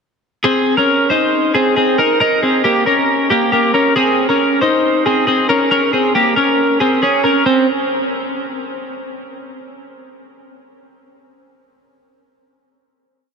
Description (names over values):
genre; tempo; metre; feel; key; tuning
indie pop; 137 BPM; 4/4; straight; unclear; A4 = 441 Hz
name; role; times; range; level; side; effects
twelve-string electric guitar; solo; 0.4-7.7 s; Bb3 to C5; -13 LUFS; equal; wide subtle chorus, diffuse ambient delay
room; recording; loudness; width
wet huge ambient reverb, RT60 6.4 s; dreamy mix soaked in reverb; -12 LUFS; side -5 dB against mid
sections
0.4-7.5 verse; 7.5-9.2 final note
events
none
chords
0.4 Ab; 2.0 Eb; 4.0 Bbm11/C; 5.7 Bbm; 7.5 N.C.